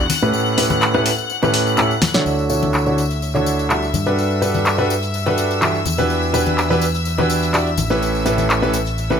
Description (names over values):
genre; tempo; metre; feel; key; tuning
piano house; 125 BPM; 4/4; swing 53% on 16ths; D major; A4 = 440 Hz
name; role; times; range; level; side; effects
rich chamber violin section; sustained chords; 0.0-9.2 s; E5 to F#6; -25 LUFS; left 4 dB; none
fingered electric bass; bass; 0.0-9.2 s; A1 to A2; -22 LUFS; equal; low-pass filter
house drum kit; drums; 0.1-9.2 s; handclaps, hi-hat, rim click, shaker, snare drum; -22 LUFS; equal; low-pass filter on hats, low-pass filter on snare, low-pass filter on perc
congas and tambourine; percussion; 0.1-9.2 s; none; -27 LUFS; left 6 dB; none
clear grand piano; riff; 0.2-9.2 s; A2 to E5; -18 LUFS; right 1 dB; low-pass filter, ping-pong delay
room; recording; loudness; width
light reverb, small room ambience; none; -15 LUFS; side -7 dB against mid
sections
0.0-2.3 A section; 2.3-9.2 B section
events
drum fill 2.0; filter sweep on grand piano 2.3-9.2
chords
0.1 A9; 2.3 Dmaj9; 3.9 Gmaj9; 5.9 Em9; 7.8 A9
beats
| 0.34 0.82 1.30 1.78 | 2.26 2.74 3.22 3.70 | 4.18 4.66 5.14 5.62 | 6.10 6.58 7.06 7.54 | 8.02 8.50 8.98